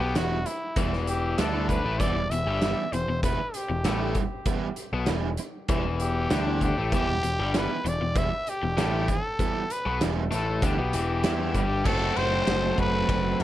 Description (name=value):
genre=indie rock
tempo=97 BPM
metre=4/4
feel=straight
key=E minor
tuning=A4 = 440 Hz
part: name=growling trumpet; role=melody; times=0.0-13.4 s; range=E4 to E5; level=-30 LUFS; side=equal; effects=tape echo
part: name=overdriven electric guitar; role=riff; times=0.0-13.4 s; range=E2 to F#4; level=-30 LUFS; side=left 5 dB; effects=none
part: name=growling picked electric bass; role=bass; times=0.0-13.4 s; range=E1 to F#2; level=-30 LUFS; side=equal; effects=overdrive
part: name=overdriven semi-hollow guitar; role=riff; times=0.2-13.4 s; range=E3 to F#4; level=-31 LUFS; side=right 7 dB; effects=analog chorus
part: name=loose indie drum kit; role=drums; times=0.2-13.4 s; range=crash cymbal, hi-hat, kick drum, ride cymbal, snare drum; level=-30 LUFS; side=equal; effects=none
room=light reverb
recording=none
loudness=-24 LUFS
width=side -13 dB against mid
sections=0.0-11.9 A section; 11.9-13.4 B section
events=none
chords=0.0 Em; 11.9 F#dim